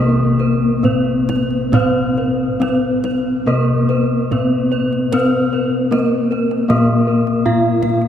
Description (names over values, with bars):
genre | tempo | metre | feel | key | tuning
Javanese gamelan | 67-82 BPM | 4/4 | straight | unclear | A4 = 441 Hz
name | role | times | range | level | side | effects
gamelan-type bronze metallophone | melody | 0.0-8.1 s | Bb3 to F4-40c | -18 LUFS | equal | none
gamelan-type bronze metallophone | accompaniment | 0.0-8.1 s | Bb3 to C4-50c | -20 LUFS | left 3 dB | none
gamelan-type bossed gongs | arpeggios | 0.0-7.9 s | Bb4 to F5-40c | -25 LUFS | left 2 dB | none
gamelan-type bronze metallophone | arpeggios | 0.0-8.1 s | Bb4 to F5-40c | -25 LUFS | right 3 dB | none
gamelan-type bossed gongs | bass | 0.0-8.1 s | Bb2 to C5-50c | -20 LUFS | left 1 dB | none
kendang | percussion | 0.4-8.1 s | none | -24 LUFS | right 2 dB | none
room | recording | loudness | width
wet cathedral reverb, RT60 5.9 s | recorded in a church or concert hall | -14 LUFS | side -9 dB against mid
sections
0.0-8.1 A section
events
none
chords
none